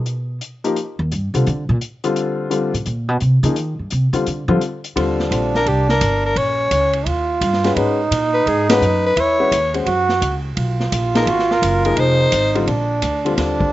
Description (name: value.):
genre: jazz, small-group swing and bop.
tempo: 171 BPM.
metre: 4/4.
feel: swing 65% on 8ths.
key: Eb major.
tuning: A4 = 439 Hz.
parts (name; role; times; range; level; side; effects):
upright bass; bass; 0.0-13.7 s; F1 to F3; -20 LUFS; equal; none.
swinging big-band drum kit; drums; 0.1-13.7 s; hi-hat, kick drum, ride cymbal, snare drum; -25 LUFS; equal; none.
clear grand piano; accompaniment; 0.6-5.5, 7.6-13.7 s; D3 to C5; -21 LUFS; left 3 dB; slapback echo.
warm trombone; second line; 5.0-13.7 s; Db4 to Gb4; -20 LUFS; right 3 dB; none.
growling soprano saxophone; melody; 5.6-12.6 s; F#4 to Db5; -18 LUFS; left 2 dB; none.
room: little or no reverb.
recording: recorded outdoors, with no room sound, nothing above 7.8 kHz.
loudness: -16 LUFS.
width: side -15 dB against mid.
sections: 0.0-5.0 A section; 5.0-13.7 B section.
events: upright bass solo 0.0-5.0; band accent 8.6.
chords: 0.0 Bmaj7; 0.8 Fsus2; 1.5 Bbadd9 (rootless); 2.2 F69; 2.9 Bbm11; 3.6 F5; 4.3 Dmadd11; 5.0 Eb69; 6.4 Bbm; 7.1 Eb7; 7.8 Abm11; 9.2 Dbm9; 9.9 Gb5; 10.6 Bmaj7; 12.0 Fm11; 12.7 Bbadd9.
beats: 0.06 0.41 | 0.76 1.11 1.46 1.81 | 2.16 2.51 2.86 3.21 | 3.56 3.91 4.26 4.61 | 4.96 5.31 5.66 6.01 | 6.36 6.71 7.06 7.41 | 7.76 8.11 8.46 8.81 | 9.17 9.52 9.87 10.22 | 10.57 10.92 11.27 11.62 | 11.97 12.32 12.67 13.03 | 13.38.